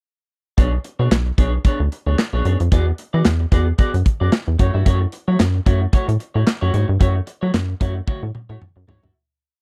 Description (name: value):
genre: early-eighties boogie funk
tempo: 112 BPM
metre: 4/4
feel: swing 56% on 16ths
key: unclear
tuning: A4 = 441 Hz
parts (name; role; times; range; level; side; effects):
- semi-hollow electric guitar; riff; 0.6-9.1 s; A3 to E5; -29 LUFS; equal; subtle chorus
- rubbery square bass; bass; 0.6-9.1 s; B1 to F#3; -20 LUFS; equal; none
- modern studio drum kit; drums; 0.6-9.1 s; handclaps, hi-hat, kick drum, snare drum, toms; -19 LUFS; equal; none
room: little or no reverb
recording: dry, close 1970s-style studio recording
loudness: -19 LUFS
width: mono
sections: 0.6-9.1 breakdown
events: fade-out 7.0-9.1; drum fill 8.1-9.1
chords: 0.6 Bm69; 2.7 E9; 4.6 F#m7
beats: | 0.58 1.11 1.65 2.18 | 2.72 3.25 3.79 4.33 | 4.86 5.40 5.93 6.47 | 7.00 7.54 8.08 8.61